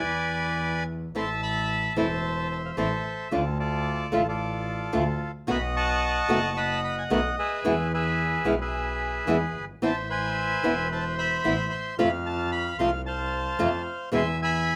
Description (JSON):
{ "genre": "tango", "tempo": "111 BPM", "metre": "4/4", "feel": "rubato", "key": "A harmonic minor", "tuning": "A4 = 437 Hz", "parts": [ { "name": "bandoneon", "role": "melody", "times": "0.0-14.8 s", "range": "F4 to C#6", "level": "-30 LUFS", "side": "equal", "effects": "none" }, { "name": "nylon-string guitar", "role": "accompaniment", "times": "0.0-14.2 s", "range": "B2 to F#4", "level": "-28 LUFS", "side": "equal", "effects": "none" }, { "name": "clear double bass", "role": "bass", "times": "0.0-14.8 s", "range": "E1 to F2", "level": "-33 LUFS", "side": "equal", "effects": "none" } ], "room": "light reverb", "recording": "none", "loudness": "-27 LUFS", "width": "mono", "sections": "0.0-1.1 A section; 1.1-14.8 B section", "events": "none", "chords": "0.0 E7; 1.1 Am; 3.3 Dm; 5.5 B7; 7.6 E; 9.8 Amadd9; 12.0 F; 14.1 E" }